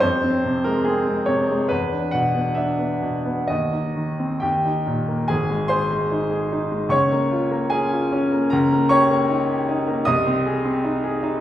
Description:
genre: classical, romantic character piece for solo piano.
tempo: 63-78 BPM.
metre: 2/4.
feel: rubato.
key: Ab major.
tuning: A4 = 440 Hz.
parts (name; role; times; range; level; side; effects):
bright baby grand piano; solo; 0.0-11.4 s; Ab1 to Eb6; -19 LUFS; equal; none.
room: wet recital hall reverb, RT60 1.5 s.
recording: heard from further back in the room.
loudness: -19 LUFS.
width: side -12 dB against mid.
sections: 0.0-5.3 A section; 5.3-11.4 B section.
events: none.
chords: 0.0 Fm; 1.7 E5; 3.5 Cm/Eb; 4.4 Eb; 5.3 Ab; 6.9 Bbm/Db; 8.5 Eb7/Db; 10.1 Ab/C.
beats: | 0.04 0.87 | 1.71 2.58 | 3.50 4.43 | 5.31 6.11 | 6.92 7.73 | 8.53 9.30 | 10.07 10.85.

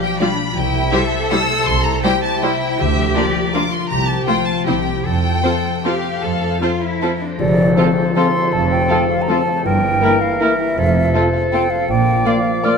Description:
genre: classical, orchestral ballroom waltz.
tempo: 145-175 BPM.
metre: 3/4.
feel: rubato.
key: F major.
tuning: A4 = 436 Hz.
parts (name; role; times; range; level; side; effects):
rich chamber violin section; melody; 0.0-12.7 s; A4 to E6; -23 LUFS; left 2 dB; none.
concert harp; arpeggios; 0.0-12.8 s; F2 to D6; -22 LUFS; left 10 dB; none.
rich chamber cello section; bass; 0.0-12.2 s; F2 to A4; -23 LUFS; right 3 dB; none.
rich chamber violin section; second line; 0.2-12.7 s; E4 to D5; -27 LUFS; left 4 dB; none.
rich chamber viola section; accompaniment; 0.2-12.7 s; F3 to F4; -24 LUFS; right 2 dB; none.
rich chamber double bass section; bass; 0.6-12.2 s; F1 to F2; -23 LUFS; right 4 dB; none.
cymbal swell and tam-tam; percussion; 5.0-8.9 s; none; -27 LUFS; left 1 dB; none.
clear oboe; second line; 7.4-12.8 s; A4 to D5; -25 LUFS; equal; none.
mellow hollow silver concert flute; second line; 7.4-12.8 s; C5 to F6; -20 LUFS; right 1 dB; none.
dark bassoon; accompaniment; 7.4-12.8 s; E3 to F3; -23 LUFS; right 2 dB; none.
mellow French horn section; sustained chords; 7.8-12.8 s; Bb3 to F4; -24 LUFS; left 4 dB; none.
mellow trumpet section; stabs; 7.8-12.8 s; A4 to D5; -24 LUFS; right 2 dB; none.
room: moderate concert hall reverb, RT60 2.4 s.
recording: none.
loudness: -14 LUFS.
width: side -5 dB against mid.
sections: 0.0-7.4 A section; 7.4-12.8 B section.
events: band accent 7.4-7.8.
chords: 0.0 G7/B; 0.6 C; 2.8 Bb/D; 3.9 F/C; 4.7 C; 5.0 F; 9.7 Edim/G; 10.8 F; 11.9 Bb.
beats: 0.20 | 0.56 0.92 1.30 | 1.66 2.03 2.42 | 2.78 3.15 3.54 | 3.90 4.27 4.67 | 5.05 5.44 5.85 | 6.23 6.62 7.02 | 7.40 7.77 8.16 | 8.53 8.90 9.29 | 9.65 10.02 10.41 | 10.78 11.15 11.53 | 11.89 12.26 12.64.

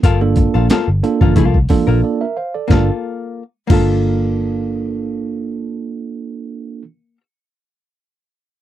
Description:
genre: funk.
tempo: 90 BPM.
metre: 4/4.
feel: straight.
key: G minor.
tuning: A4 = 441 Hz.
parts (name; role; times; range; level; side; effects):
archtop guitar, miked and amplified; accompaniment; 0.0-7.2 s; Bb3 to Bb4; -22 LUFS; left 8 dB; none.
vintage muted picked electric bass; bass; 0.0-6.8 s; G1 to C2; -16 LUFS; equal; none.
breakbeat sampler-style drum kit; drums; 0.0-3.9 s; crash cymbal, hi-hat, kick drum, snare drum; -14 LUFS; left 1 dB; none.
tine electric piano; stabs; 0.2-6.8 s; Bb3 to F5; -19 LUFS; right 6 dB; none.
congas; percussion; 0.4-3.9 s; none; -22 LUFS; right 5 dB; none.
room: little or no reverb.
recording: dry, close 1970s-style studio recording.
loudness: -14 LUFS.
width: side -12 dB against mid.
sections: 0.0-2.7 A section; 2.7-5.4 B section.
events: break 2.0-2.7.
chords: 0.0 Gm9.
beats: | 0.04 0.70 1.37 2.03 | 2.70 3.37 4.03 4.70.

